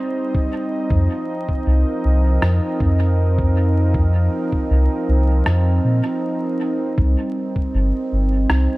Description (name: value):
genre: ambient dub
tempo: 79 BPM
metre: 4/4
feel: straight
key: unclear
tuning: A4 = 443 Hz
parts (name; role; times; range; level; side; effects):
- warm analog pad; sustained chords; 0.0-8.8 s; F3 to Eb5; -22 LUFS; right 1 dB; chorus
- electronic kick drum; drums; 0.3-7.7 s; none; -20 LUFS; equal; small room reverb
- soft dub sub bass; bass; 0.9-8.7 s; G1 to Bb2; -16 LUFS; equal; none
- electronic rim click; drums; 2.4-8.7 s; none; -26 LUFS; equal; small room reverb, dub echo
room: light reverb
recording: vinyl crackle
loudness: -16 LUFS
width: side -20 dB against mid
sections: 0.0-8.8 A section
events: break 5.5-7.0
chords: 0.0 Cm; 0.9 F7sus4; 7.0 Cm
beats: 0.15 | 0.91 1.67 2.43 3.19 | 3.95 4.71 5.46 6.22 | 6.98 7.74 8.50